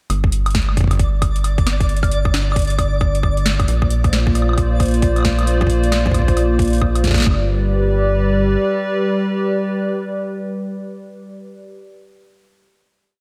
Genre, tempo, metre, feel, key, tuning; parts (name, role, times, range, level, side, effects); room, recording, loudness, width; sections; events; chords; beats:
IDM; 134 BPM; 4/4; swing 62% on 16ths; A4 = 438 Hz
rubbery square bass; bass; 0.1-8.6 s; G1 to Bb1; -20 LUFS; equal
booming analog drum machine; drums; 0.1-7.4 s; hi-hat, snare drum, woodblock; -26 LUFS; equal; overdrive, analog delay
twinkling granular texture; texture; 0.8-7.3 s; D5; -32 LUFS; equal; built-in reverb
electronic kick drum; drums; 0.2-7.4 s; -21 LUFS; equal
hollow soft pad; sustained chords; 3.7-11.6 s; G3 to D5; -22 LUFS; equal; chorus
moderate lush hall reverb, RT60 1.8 s; dreamy mix soaked in reverb; -17 LUFS; mono
0.1-7.3 groove; 7.3-10.8 final chord
0.1 G5; 3.7 Bbadd9; 7.3 G
| 0.10 0.55 0.99 1.44 | 1.89 2.34 2.79 3.23 | 3.68 4.13 4.58 5.03 | 5.47 5.92 6.37 6.82 | 7.26 7.71 8.16 8.61 | 9.05 9.50 9.95 10.40